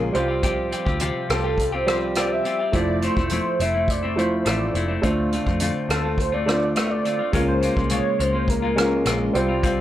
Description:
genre	indie pop, bedroom pop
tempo	104 BPM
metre	4/4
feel	straight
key	unclear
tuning	A4 = 440 Hz
part	warm velvety synth lead	melody	0.0-9.4 s	A4 to E5	-26 LUFS	equal	lush chorus, tape echo
part	semi-hollow electric guitar	accompaniment	0.0-9.8 s	C3 to Ab4	-26 LUFS	left 4 dB	wide subtle chorus, warbly pitch drift
part	warm upright piano	accompaniment	0.0-9.8 s	G3 to C5	-25 LUFS	right 2 dB	cassette tape
part	vintage muted picked electric bass	bass	0.0-9.8 s	E1 to F2	-28 LUFS	equal	tube saturation
part	unplugged drum kit	drums	0.1-9.8 s	hi-hat, kick drum, rim click	-26 LUFS	equal	none
room	light reverb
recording	none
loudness	-19 LUFS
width	side -12 dB against mid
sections	0.0-9.8 A section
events	none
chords	0.1 Csus4; 2.7 Fmaj7; 5.0 Dm7; 7.3 Db6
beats	| 0.43 1.01 1.58 2.16 | 2.73 3.31 3.88 4.46 | 5.03 5.61 6.18 6.76 | 7.33 7.91 8.48 9.06 | 9.63

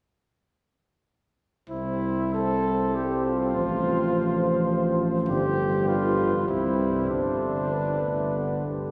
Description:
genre	classical, brass quintet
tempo	100 BPM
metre	3/4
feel	uneven beats, rubato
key	C major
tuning	A4 = 440 Hz
part	mellow cornet	melody	1.7-8.7 s	B4 to C5	-34 LUFS	equal	none
part	dark trumpet	second line	1.7-8.6 s	D4 to A4	-31 LUFS	equal	none
part	warm French horn	accompaniment	1.7-8.9 s	G3 to C4	-35 LUFS	equal	none
part	warm trombone	accompaniment	1.7-8.9 s	C3 to G3	-33 LUFS	equal	none
part	warm tuba	bass	1.7-8.6 s	G1 to C2	-30 LUFS	equal	none
room	wet cathedral reverb, RT60 5.3 s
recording	heard from further back in the room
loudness	-25 LUFS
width	mono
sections	1.7-8.9 A section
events	none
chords	1.7 C; 3.5 F/A; 5.3 G; 6.5 C; 7.1 G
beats	| 1.70 2.34 2.95 | 3.54 4.13 4.71 | 5.29 5.88 6.48 | 7.10 7.73 8.36

